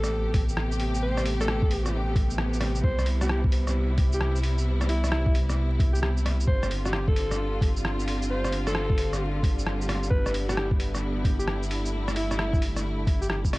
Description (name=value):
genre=future garage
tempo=132 BPM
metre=4/4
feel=swing 65% on 16ths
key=A minor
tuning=A4 = 440 Hz
part: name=raspy alto saxophone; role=melody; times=0.0-13.4 s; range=E4 to C5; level=-33 LUFS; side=equal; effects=analog delay
part: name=rich studio string section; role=sustained chords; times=0.0-13.6 s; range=C3 to G4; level=-32 LUFS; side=equal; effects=sidechain pumping
part: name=soft dub sub bass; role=bass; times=0.0-13.6 s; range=G1 to C2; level=-28 LUFS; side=equal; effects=none
part: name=lo-fi sampler-style drum kit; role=drums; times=0.0-13.6 s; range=hi-hat, rim click, shaker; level=-32 LUFS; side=equal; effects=overdrive
part: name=sub drop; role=sound effects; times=0.0-1.0 s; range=none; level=barely audible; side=none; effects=none
part: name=electronic kick drum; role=drums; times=0.3-13.5 s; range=none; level=-24 LUFS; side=equal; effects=overdrive
room=light reverb, digital ambience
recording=vinyl crackle, nothing above 10.9 kHz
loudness=-23 LUFS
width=side -21 dB against mid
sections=0.0-13.6 A section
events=impact 0.0-1.0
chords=0.0 Am9; 2.8 Cmaj7; 6.5 G7sus4; 10.1 Em7/G